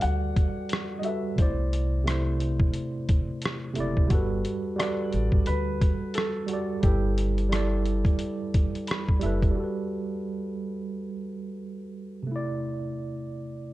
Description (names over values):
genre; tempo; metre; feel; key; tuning
lo-fi hip hop; 88 BPM; 4/4; swing 60% on 16ths; G major; A4 = 440 Hz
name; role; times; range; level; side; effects
felt-muted upright piano; melody; 0.0-9.2 s; G4 to F#5; -34 LUFS; left 1 dB; low-pass filter
tine electric piano; accompaniment; 0.0-13.7 s; C3 to B5; -30 LUFS; right 2 dB; medium stereo tremolo, cassette tape, low-pass filter
upright bass; bass; 0.0-9.5 s; F#1 to D2; -28 LUFS; equal; none
trip hop sampler-style drum kit; drums; 0.0-9.6 s; hi-hat, kick drum, rim click; -25 LUFS; equal; none
room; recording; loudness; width
light reverb; dark, warm production; -25 LUFS; side -16 dB against mid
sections
0.0-9.6 A section; 9.6-13.7 B section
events
tine electric piano fill 8.5-9.6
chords
0.0 Gmaj9; 1.4 C69; 4.1 Gmaj9; 6.8 G69; 9.6 Gmaj9; 12.3 C69